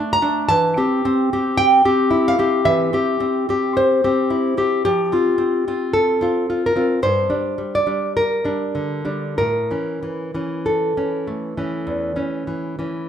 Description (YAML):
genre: romantic piece for solo classical guitar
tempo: 46-56 BPM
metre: 4/4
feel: rubato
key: unclear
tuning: A4 = 441 Hz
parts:
  - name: nylon-string guitar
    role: solo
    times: 0.0-13.1 s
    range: E2 to Bb5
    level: -17 LUFS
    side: equal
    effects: none
room: moderate large studio reverb, RT60 1.1 s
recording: band playing live in one room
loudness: -17 LUFS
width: side -8 dB against mid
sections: 0.0-13.1 A section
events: none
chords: 0.0 D5; 0.5 C/E; 4.8 F5; 7.0 Gm; 9.4 A